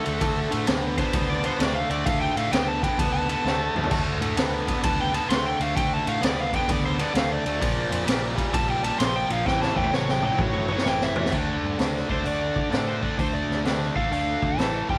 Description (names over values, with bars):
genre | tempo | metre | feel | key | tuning
blues rock power trio and southern rock | 130 BPM | 4/4 | swing 65% on 8ths | D minor | A4 = 440 Hz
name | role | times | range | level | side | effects
overdriven slide guitar | melody | 0.0-15.0 s | A4 to C6 | -30 LUFS | equal | slapback echo
sludgy distorted guitar | riff | 0.0-15.0 s | G2 to D4 | -30 LUFS | equal | overdrive
vintage muted picked electric bass | bass | 0.1-15.0 s | G1 to D3 | -34 LUFS | equal | none
raw garage drum kit | drums | 0.1-15.0 s | crash cymbal, hi-hat, kick drum, ride cymbal, snare drum, toms | -29 LUFS | equal | none
room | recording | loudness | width
light reverb, studio reverb | none | -24 LUFS | mono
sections
0.0-11.3 A section; 11.3-15.0 B section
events
electric slide guitar solo 0.0-11.3; drum fill 3.5-3.9, 9.5-11.3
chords
0.0 D5; 7.6 Bb; 9.5 A5; 11.3 D5; 14.6 A5